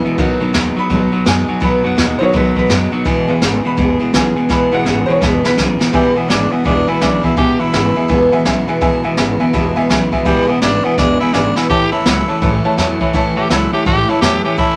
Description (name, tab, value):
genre	rockabilly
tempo	167 BPM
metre	4/4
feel	swing 63% on 8ths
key	E major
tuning	A4 = 440 Hz
part	picked steel-string acoustic guitar	accompaniment	0.0-14.8 s	E2 to G#4	-22 LUFS	equal	none
part	tack piano	accompaniment	0.0-14.7 s	D#3 to B5	-22 LUFS	equal	none
part	electric guitar at the edge of break-up	riff	0.0-14.8 s	E2 to G#3	-20 LUFS	equal	spring reverb
part	upright bass	bass	0.0-14.8 s	E1 to F#2	-24 LUFS	equal	none
part	jazz brush drum kit	drums	0.2-14.7 s	hi-hat, kick drum, snare drum	-21 LUFS	equal	none
part	growling tenor saxophone	melody	5.9-14.8 s	G3 to G4	-20 LUFS	equal	none
room	moderate studio reverb, RT60 0.5 s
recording	none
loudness	-14 LUFS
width	mono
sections	0.0-5.9 A section; 5.9-14.8 B section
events	honky-tonk piano solo 0.0-5.9; drum fill 4.5-5.9, 11.0-11.7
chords	0.2 B; 3.1 E; 11.7 A